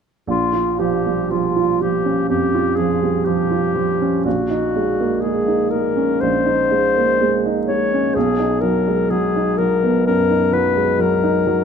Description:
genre	classical, impressionist duo for clarinet and grand piano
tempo	58-64 BPM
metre	4/4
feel	rubato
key	Bb minor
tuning	A4 = 438 Hz
part	clear clarinet	melody	0.3-11.6 s	F4 to Db5	-19 LUFS	left 5 dB	none
part	clear baby grand piano	accompaniment	0.3-11.6 s	Bb1 to F4	-18 LUFS	right 4 dB	none
room	moderate recital hall reverb, RT60 1.7 s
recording	close, detailed microphones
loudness	-16 LUFS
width	side -7 dB against mid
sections	0.3-11.6 A section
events	none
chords	0.3 Bbm6; 4.3 Ab9sus4/Bb; 8.2 B

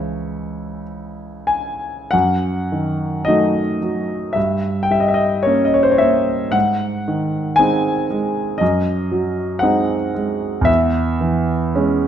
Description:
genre	classical, romantic nocturne for solo piano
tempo	45-60 BPM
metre	4/4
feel	rubato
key	C# minor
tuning	A4 = 440 Hz
part	warm concert grand piano	solo	0.0-12.1 s	C#2 to G#5	-16 LUFS	equal	none
room	moderate recital hall reverb, RT60 1.7 s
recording	none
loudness	-16 LUFS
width	side -9 dB against mid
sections	0.0-2.1 A section; 2.1-12.1 B section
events	none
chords	0.0 C#m; 2.1 D#dim/F#; 4.4 Gdim; 6.5 G#; 8.6 G#7/F#; 10.7 C#m/E

